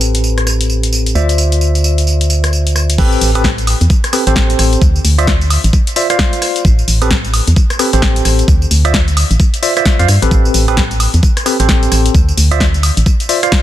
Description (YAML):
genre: UK garage, two-step garage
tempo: 131 BPM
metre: 4/4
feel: swing 61% on 16ths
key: A minor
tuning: A4 = 441 Hz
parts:
  - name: bright tine electric piano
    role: stabs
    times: 0.0-13.6 s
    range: C4 to F5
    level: -17 LUFS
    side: equal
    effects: medium stereo tremolo, ping-pong delay
  - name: organ-like FM bass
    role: bass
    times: 0.0-13.0 s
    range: A1 to G2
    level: -12 LUFS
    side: equal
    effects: none
  - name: punchy analog drum machine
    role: drums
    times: 0.0-13.6 s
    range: crash cymbal, hi-hat, rim click, snare drum, tambourine, woodblock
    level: -17 LUFS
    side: equal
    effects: none
  - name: electronic kick drum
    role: drums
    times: 3.0-13.6 s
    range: none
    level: -12 LUFS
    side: equal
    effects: overdrive
room: little or no reverb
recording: dense, heavily limited modern master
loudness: -10 LUFS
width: side -13 dB against mid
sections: 0.0-3.0 A section; 3.0-13.6 B section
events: drop 3.0-13.6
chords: 0.0 Am9; 1.2 Dm9; 3.0 Am9; 4.8 Dm9; 6.6 Am9; 8.5 Dm9; 10.3 Am9; 12.1 Dm9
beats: 0.24 0.69 | 1.15 1.61 2.07 2.53 | 2.98 3.44 3.90 4.36 | 4.82 5.28 5.73 6.19 | 6.65 7.11 7.57 8.02 | 8.48 8.94 9.40 9.86 | 10.31 10.77 11.23 11.69 | 12.14 12.60 13.06 13.52